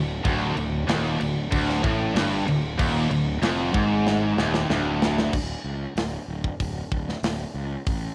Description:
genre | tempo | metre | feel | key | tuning
heavy metal | 94 BPM | 4/4 | straight | unclear | A4 = 440 Hz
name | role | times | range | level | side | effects
heavy high-gain guitar | riff | 0.0-5.3 s | D2 to A2 | -31 LUFS | equal | distortion, cassette tape
high-gain distorted guitar | riff | 0.0-5.3 s | D2 to A2 | -29 LUFS | equal | distortion, cassette tape
tight distorted guitar | riff | 0.0-5.3 s | D2 to A2 | -35 LUFS | equal | none
fuzz fingered electric bass | bass | 0.0-8.1 s | D1 to C#2 | -32 LUFS | equal | overdrive
tight metal drum kit | drums | 0.2-8.0 s | crash cymbal, hi-hat, kick drum, snare drum | -30 LUFS | equal | cassette tape
room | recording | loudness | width
light reverb, small room ambience | home recording on cassette | -25 LUFS | mono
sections
0.0-5.3 A section; 5.3-8.1 B section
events
drum fill 4.1-5.3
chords
0.0 Dm; 5.3 D5

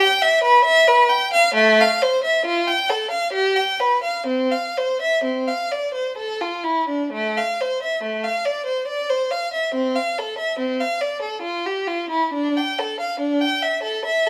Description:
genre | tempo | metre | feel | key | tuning
classical, baroque-style suite movement for unaccompanied violin | 61-72 BPM | 3/4 | rubato | C major, A minor from 7.1 s | A4 = 435 Hz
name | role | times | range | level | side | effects
clear violin | solo | 0.0-14.3 s | A3 to G5 | -20 LUFS | equal | none
room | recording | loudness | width
moderate stone room reverb, RT60 1.1 s | none | -20 LUFS | mono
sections
0.0-7.1 A section; 7.1-14.3 A section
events
none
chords
none

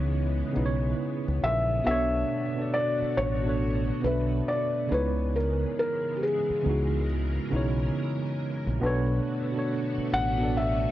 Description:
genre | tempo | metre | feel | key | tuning
hip hop | 69 BPM | 4/4 | swing 64% on 16ths | B dorian | A4 = 440 Hz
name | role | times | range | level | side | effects
felt-muted upright piano | melody | 0.0-10.9 s | G4 to F#5 | -29 LUFS | left 1 dB | low-pass filter, analog delay
mellow tine electric piano | accompaniment | 0.0-10.9 s | B2 to E5 | -30 LUFS | right 2 dB | medium stereo tremolo, low-pass filter
string machine, full ensemble | sustained chords | 0.0-10.9 s | C#3 to A#4 | -36 LUFS | equal | ensemble chorus, low-pass filter
deep dub fingered electric bass | bass | 0.0-10.9 s | A1 to C#2 | -28 LUFS | equal | none
room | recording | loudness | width
light reverb, digital ambience | cassette tape | -25 LUFS | side -14 dB against mid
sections
0.0-10.9 A section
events
none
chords
0.0 C#m7; 1.9 Bm7; 4.9 C#m7; 8.8 Bm7

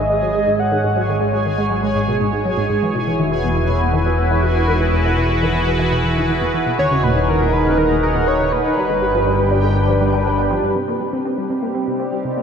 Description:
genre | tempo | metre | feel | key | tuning
ambient, sequencer-driven space music | 121 BPM | 4/4 | straight | G# minor | A4 = 440 Hz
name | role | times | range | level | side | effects
pulse-width lead | melody | 0.0-1.3, 6.8-10.0 s | A#4 to F#5 | -22 LUFS | equal | chorus, ping-pong delay
sweeping resonant pad | sustained chords | 0.0-12.4 s | G3 to F#5 | -20 LUFS | right 1 dB | chorus
fat analog bass | bass | 0.0-10.7 s | D#1 to G#1 | -21 LUFS | equal | tube saturation
bubbling stepped-filter texture | texture | 0.0-12.4 s | F4 to G#5 | -28 LUFS | equal | chorus, built-in reverb
resonant blip pluck | riff | 0.1-12.4 s | D#2 to C4 | -22 LUFS | left 1 dB | phaser, lush chorus, ping-pong delay
room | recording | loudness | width
wet huge ambient reverb, RT60 7.9 s | dreamy mix soaked in reverb | -15 LUFS | side -7 dB against mid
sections
0.0-10.8 A section; 10.8-12.4 B section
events
none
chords
0.0 G#m7; 2.8 Esus2; 6.8 D#m; 8.8 G; 10.8 Cm

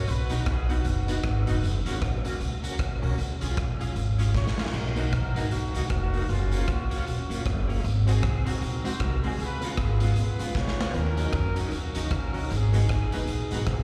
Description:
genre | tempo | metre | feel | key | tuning
ska | 154 BPM | 4/4 | swing 60% on 8ths | F# major | A4 = 440 Hz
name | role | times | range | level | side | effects
warm horn section | melody | 0.0-1.5, 4.4-13.8 s | A#3 to C#5 | -38 LUFS | equal | tape echo, slapback echo
clean electric guitar | accompaniment | 0.0-13.6 s | F#3 to F#4 | -38 LUFS | equal | tremolo, tape echo, slapback echo
tonewheel organ | stabs | 0.0-13.6 s | F#3 to B4 | -43 LUFS | equal | none
upright bass | bass | 0.0-13.8 s | E#1 to F#2 | -29 LUFS | equal | none
raw garage drum kit | drums | 0.1-13.8 s | crash cymbal, hi-hat, kick drum, rim click, snare drum | -33 LUFS | equal | none
room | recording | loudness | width
little or no reverb | live gig heard through the venue's PA, recital hall reverb | -27 LUFS | mono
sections
0.0-4.7 A section; 4.7-13.8 B section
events
drum fill 4.3-4.7, 10.6-10.9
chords
0.1 B; 1.6 F#; 3.2 C#; 4.7 Bmaj7; 6.3 F#maj7; 7.8 G#7; 9.4 C#7; 10.9 D#m7; 12.5 G#m7

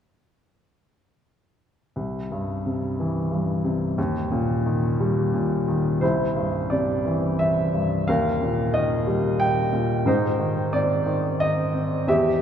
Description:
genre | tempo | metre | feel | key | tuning
classical, lyrical solo piano | 89 BPM | 3/4 | rubato | unclear | A4 = 436 Hz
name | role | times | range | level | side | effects
warm upright piano | solo | 2.0-12.4 s | C2 to G5 | -21 LUFS | equal | none
room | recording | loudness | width
wet cathedral reverb, RT60 6.3 s | recorded in a church or concert hall | -21 LUFS | side -8 dB against mid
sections
2.0-6.0 A section; 6.0-12.4 B section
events
none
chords
2.0 C; 4.0 Eb; 6.0 C; 8.1 Eb; 10.1 Ab

